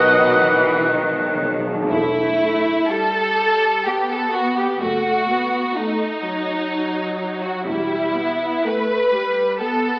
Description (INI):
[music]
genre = classical, slow romantic movement for symphony orchestra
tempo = 57-65 BPM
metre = 3/4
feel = rubato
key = E minor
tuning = A4 = 440 Hz
[part]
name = rich studio violin section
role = melody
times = 0.0-10.0 s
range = F#5 to A5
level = -33 LUFS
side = equal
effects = none
[part]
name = bright oboe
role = second line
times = 0.0-0.9 s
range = F#5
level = -26 LUFS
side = equal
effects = none
[part]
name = dark clarinet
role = second line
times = 0.0-1.6 s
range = B4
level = -22 LUFS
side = left 1 dB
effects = none
[part]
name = mellow hollow silver concert flute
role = second line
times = 0.0-1.5 s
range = F#6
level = -19 LUFS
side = equal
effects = none
[part]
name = rich studio violin section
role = second line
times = 0.0-10.0 s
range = D#4 to B4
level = -19 LUFS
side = equal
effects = none
[part]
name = mellow bassoon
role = accompaniment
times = 0.0-1.5 s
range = D#3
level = -23 LUFS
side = equal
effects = none
[part]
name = warm studio viola section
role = accompaniment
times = 0.0-10.0 s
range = F#3 to D#5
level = -24 LUFS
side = equal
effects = none
[part]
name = mellow French horn section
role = sustained chords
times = 0.0-0.9 s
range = F#3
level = -32 LUFS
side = equal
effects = none
[part]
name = rich studio cello section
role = bass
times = 0.0-8.5 s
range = E2 to E3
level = -25 LUFS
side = equal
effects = none
[part]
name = rich studio double bass section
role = bass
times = 0.0-8.5 s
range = E1 to B1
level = -33 LUFS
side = equal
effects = none
[part]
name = timpani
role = percussion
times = 0.0-1.9 s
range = B2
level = -26 LUFS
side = equal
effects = none
[sound]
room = wet scoring stage reverb, RT60 1.5 s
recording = AM radio sound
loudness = -17 LUFS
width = side -26 dB against mid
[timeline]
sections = 0.0-1.9 A section; 1.9-10.0 B section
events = timpani fill 0.0-1.9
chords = 0.0 B; 1.9 Em; 4.8 F#m6; 7.7 Em